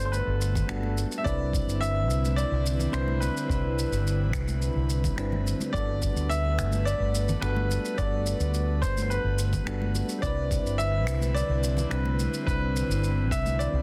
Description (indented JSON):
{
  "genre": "sunset chillout",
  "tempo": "107 BPM",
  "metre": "4/4",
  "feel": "straight",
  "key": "unclear",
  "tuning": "A4 = 439 Hz",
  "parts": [
    { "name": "bright grand piano", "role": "melody", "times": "0.0-13.8 s", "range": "B4 to E5", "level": "-35 LUFS", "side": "equal", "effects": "digital delay" },
    { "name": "soft electric-piano-like synth keys", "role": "accompaniment", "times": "0.0-13.8 s", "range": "G3 to B4", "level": "-37 LUFS", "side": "equal", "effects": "chorus, tremolo, delay" },
    { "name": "airy breathy pad", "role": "sustained chords", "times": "0.0-13.8 s", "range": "D3 to B4", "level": "-38 LUFS", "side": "equal", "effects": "chorus" },
    { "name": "mellow fretless electric bass", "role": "bass", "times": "0.0-13.8 s", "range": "G1 to D2", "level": "-30 LUFS", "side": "equal", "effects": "none" },
    { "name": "shaker and finger snaps", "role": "drums", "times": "0.1-13.7 s", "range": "none", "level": "-40 LUFS", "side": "equal", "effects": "soft clipping on snare" },
    { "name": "electronic kick drum", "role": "drums", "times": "0.6-13.4 s", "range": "none", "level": "-33 LUFS", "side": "equal", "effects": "none" },
    { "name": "congas", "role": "percussion", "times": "0.6-13.6 s", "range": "none", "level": "-39 LUFS", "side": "equal", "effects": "none" }
  ],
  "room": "light reverb, small room ambience",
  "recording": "dense, heavily limited modern master",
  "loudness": "-27 LUFS",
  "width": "mono",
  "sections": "0.0-13.8 A section",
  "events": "none",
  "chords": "0.0 Gmaj9; 1.3 Cmaj9; 5.7 Gmaj9; 10.2 Cmaj9",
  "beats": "0.13 0.69 | 1.25 1.82 2.38 2.94 | 3.50 4.06 4.62 5.18 | 5.74 6.30 6.86 7.42 | 7.98 8.54 9.11 9.67 | 10.23 10.79 11.35 11.91 | 12.47 13.03 13.59"
}